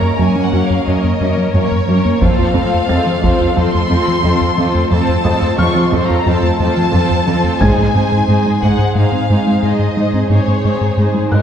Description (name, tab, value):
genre	cinematic, hybrid orchestral and electronic film score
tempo	89 BPM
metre	4/4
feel	straight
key	unclear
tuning	A4 = 441 Hz
part	warm symphonic violin section	melody	0.0-11.4 s	C5 to Db6	-21 LUFS	left 3 dB	none
part	dark symphonic violin section	second line	0.0-11.4 s	Ab4 to Db5	-21 LUFS	left 3 dB	none
part	warm symphonic viola section	accompaniment	0.0-11.4 s	Ab3 to F4	-20 LUFS	right 1 dB	none
part	harp-like synth pluck	arpeggios	0.0-11.4 s	F3 to Ab4	-21 LUFS	right 2 dB	chorus, ping-pong delay
part	rubbery square bass	riff	0.0-11.4 s	F2 to Ab3	-17 LUFS	left 1 dB	none
part	felt-muted upright piano	texture	0.0-11.4 s	Eb6 to A6	-29 LUFS	left 1 dB	none
part	rich symphonic cello section	bass	0.2-11.4 s	F2 to Ab2	-19 LUFS	right 2 dB	none
part	taiko ensemble	drums	2.2-3.5, 7.6-8.9 s	none	-20 LUFS	equal	none
room	wet scoring stage reverb, RT60 1.5 s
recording	heard from further back in the room, nothing above 10.8 kHz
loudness	-12 LUFS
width	side -8 dB against mid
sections	0.0-11.4 A section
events	none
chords	0.0 Gb; 2.2 F; 7.6 Ab